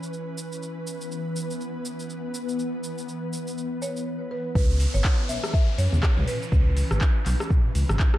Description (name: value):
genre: afro house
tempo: 122 BPM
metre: 4/4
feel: swing 58% on 16ths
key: C# minor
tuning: A4 = 440 Hz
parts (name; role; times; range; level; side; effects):
- ethereal airy pad; sustained chords; 0.0-8.2 s; E3 to B4; -32 LUFS; left 1 dB; ensemble chorus, built-in reverb, sidechain pumping
- deep house drum kit; drums; 0.0-8.2 s; cabasa, handclaps, hi-hat, rim click, toms; -32 LUFS; equal; overdrive
- buzzing marimba with medium mallets; melody; 3.8-6.7 s; B4 to E5; -34 LUFS; equal; digital delay
- smooth synth bass; bass; 4.6-8.0 s; G#1 to F#2; -23 LUFS; equal; sidechain pumping
- electronic kick drum; drums; 4.6-8.1 s; none; -21 LUFS; equal; none
- downlifter; sound effects; 4.6-8.2 s; none; -37 LUFS; equal; none
room: little or no reverb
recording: dark, warm production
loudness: -23 LUFS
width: side -14 dB against mid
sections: 0.0-4.6 A section; 4.6-8.2 B section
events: drop 4.6-8.2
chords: 0.0 C#m7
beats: 0.13 | 0.62 1.11 1.60 2.09 | 2.59 3.08 3.57 4.06 | 4.55 5.04 5.54 6.03 | 6.52 7.01 7.50 8.00